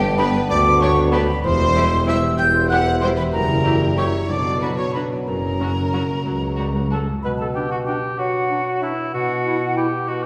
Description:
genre	cinematic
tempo	63 BPM (dotted quarters)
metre	6/8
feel	straight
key	B minor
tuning	A4 = 440 Hz
part	marimba with soft mallets	melody	0.0-6.9 s	G4 to G5	-31 LUFS	equal	none
part	bright concert flute	second line	0.0-10.3 s	E5 to G6	-26 LUFS	equal	none
part	rich studio violin section	second line	0.0-6.9 s	G4 to G5	-31 LUFS	equal	none
part	mellow French horn section	sustained chords	0.0-6.9 s	F#3 to E4	-28 LUFS	equal	none
part	concert harp	arpeggios	0.0-10.3 s	E2 to C#6	-31 LUFS	equal	none
part	mellow tuba	bass	0.0-7.1 s	E1 to D2	-27 LUFS	equal	none
part	warm studio cello section	bass	0.0-7.1 s	C#2 to B2	-29 LUFS	equal	none
part	warm studio double bass section	bass	0.0-7.1 s	E1 to D2	-28 LUFS	equal	none
part	warm symphonic violin section	melody	0.2-7.0 s	F#4 to G4	-37 LUFS	equal	none
part	warm studio viola section	accompaniment	0.2-7.0 s	F#3 to E4	-33 LUFS	equal	none
part	mellow cor anglais	second line	6.9-10.3 s	E4 to B4	-26 LUFS	equal	none
part	mellow bassoon	accompaniment	7.2-10.3 s	B2 to F#3	-29 LUFS	equal	none
part	mellow clarinet	second line	7.6-9.9 s	D4 to E4	-32 LUFS	equal	none
room	wet recital hall reverb, RT60 1.7 s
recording	recorded in a church or concert hall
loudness	-20 LUFS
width	mono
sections	0.0-7.2 A section; 7.2-10.3 B section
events	none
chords	0.0 G; 1.4 C/E; 3.3 F#7b9; 4.3 Bm; 5.3 F#; 7.2 Bm; 9.1 F#7/B

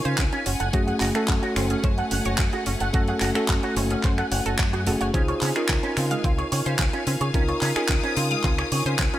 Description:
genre	nu-disco, nu disco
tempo	109 BPM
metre	4/4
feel	straight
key	Db major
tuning	A4 = 440 Hz
part	bell-like tine electric piano	accompaniment	0.0-9.2 s	A3 to C5	-28 LUFS	equal	sidechain pumping, tape echo
part	rich symphonic string section	sustained chords	0.0-9.2 s	A3 to Eb6	-32 LUFS	left 4 dB	sidechain pumping
part	wide unison pluck	arpeggios	0.0-9.2 s	C4 to F5	-33 LUFS	right 2 dB	sidechain pumping, tape echo
part	electric guitar with an envelope filter	riff	0.1-9.2 s	Ab3 to Gb5	-30 LUFS	right 2 dB	ensemble chorus, tape echo
part	fingered electric bass with an envelope filter	bass	0.1-9.1 s	Gb1 to Db3	-27 LUFS	equal	sidechain pumping
part	pop drum kit	drums	0.1-9.2 s	finger snaps, handclaps, hi-hat	-28 LUFS	equal	overdrive
part	electronic kick drum	drums	0.2-9.1 s	none	-24 LUFS	equal	overdrive
room	light reverb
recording	none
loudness	-21 LUFS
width	side -13 dB against mid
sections	0.0-9.2 A section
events	none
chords	0.5 Gbmadd9; 5.1 Dbmaj7

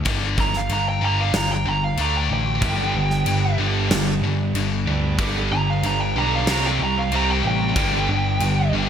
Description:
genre	hard rock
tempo	93 BPM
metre	4/4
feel	straight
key	G major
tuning	A4 = 440 Hz
part	scooped high-gain guitar	riff	0.0-8.9 s	G2 to D4	-25 LUFS	left 8 dB	distortion
part	overdriven picked electric bass	bass	0.0-8.9 s	G1 to D2	-24 LUFS	equal	none
part	gated 80s drum kit	drums	0.1-8.6 s	crash cymbal, kick drum, snare drum	-27 LUFS	equal	none
part	lead guitar through a small cranked amp	melody	0.4-8.7 s	F5 to Bb5	-24 LUFS	right 2 dB	overdrive
part	cranked stack guitar	riff	2.6-8.9 s	G2 to C4	-28 LUFS	right 8 dB	overdrive, ensemble chorus
part	cranked stack guitar	riff	2.6-8.9 s	C3 to G4	-27 LUFS	right 3 dB	overdrive
room	moderate lush hall reverb, RT60 2.5 s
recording	bright 1980s-style digital production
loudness	-18 LUFS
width	side -8 dB against mid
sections	0.0-8.9 A section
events	lead electric guitar solo 0.0-8.9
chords	0.0 G5; 2.0 D5; 2.6 G; 6.5 C5; 7.8 G

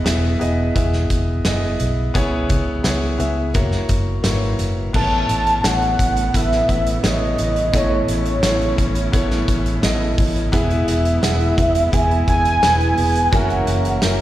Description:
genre	piano-driven pop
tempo	86 BPM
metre	4/4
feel	straight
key	unclear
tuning	A4 = 440 Hz
part	clear grand piano	accompaniment	0.0-14.2 s	A2 to F#5	-23 LUFS	left 1 dB	slapback echo
part	vintage muted fingered electric bass	bass	0.1-14.2 s	E1 to C#2	-21 LUFS	equal	none
part	loose indie drum kit	drums	0.1-14.2 s	crash cymbal, hi-hat, kick drum, snare drum	-22 LUFS	equal	none
part	warm studio string section	sustained chords	4.9-14.2 s	C#3 to E4	-30 LUFS	left 1 dB	stereo widening
part	warm velvety synth lead	melody	5.0-14.0 s	C#5 to A5	-20 LUFS	right 1 dB	chorus, slapback echo, tape echo
part	fingerpicked steel-string acoustic guitar	riff	10.5-14.2 s	F#2 to A#4	-24 LUFS	right 3 dB	slapback echo
room	light reverb, small room reverb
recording	live gig heard through the venue's PA, recital hall reverb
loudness	-16 LUFS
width	side -14 dB against mid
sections	0.0-4.9 A section; 4.9-14.2 B section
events	none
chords	0.0 Emaj7; 2.2 C#m7; 3.5 F#7; 4.9 Aadd9; 10.5 E; 13.3 F#7

